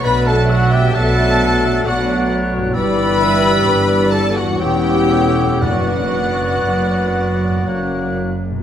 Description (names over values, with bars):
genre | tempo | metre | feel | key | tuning
classical, slow romantic movement for symphony orchestra | 58-67 BPM | 3/4 | rubato | B minor | A4 = 436 Hz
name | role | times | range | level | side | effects
warm studio violin section | melody | 0.0-8.2 s | F#5 to B5 | -23 LUFS | left 3 dB | none
dark studio violin section | second line | 0.0-8.2 s | F#4 to B4 | -24 LUFS | left 3 dB | none
hollow concert flute | second line | 0.0-8.3 s | E6 to F#6 | -26 LUFS | equal | none
mellow oboe | second line | 0.0-8.2 s | F#4 to B4 | -28 LUFS | right 1 dB | none
warm clarinet | second line | 0.0-8.4 s | C#5 to D5 | -28 LUFS | left 1 dB | none
clear bassoon | accompaniment | 0.0-8.4 s | F#3 to B3 | -26 LUFS | right 1 dB | none
dark symphonic viola section | accompaniment | 0.0-8.2 s | C#5 to E5 | -27 LUFS | right 1 dB | none
dark French horn section | sustained chords | 0.0-8.4 s | C#4 to B4 | -24 LUFS | left 4 dB | none
mellow trombone section | sustained chords | 0.0-8.4 s | E3 to B3 | -26 LUFS | right 2 dB | none
concert harp | arpeggios | 0.0-8.6 s | E2 to C#5 | -25 LUFS | left 6 dB | none
warm trumpet | stabs | 0.0-8.2 s | F#4 to B4 | -24 LUFS | right 1 dB | none
dark symphonic double bass section | bass | 0.0-8.6 s | E1 to B1 | -20 LUFS | right 2 dB | none
warm symphonic cello section | bass | 0.0-8.6 s | E2 to B2 | -22 LUFS | right 2 dB | none
timpani | percussion | 5.6-7.1 s | F#2 | -27 LUFS | equal | none
room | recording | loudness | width
wet recital hall reverb, RT60 1.6 s | none | -13 LUFS | side -9 dB against mid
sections
0.0-8.6 A section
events
none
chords
0.0 D/B; 2.8 G6; 4.6 C#m7b5/E; 5.6 Bm/F#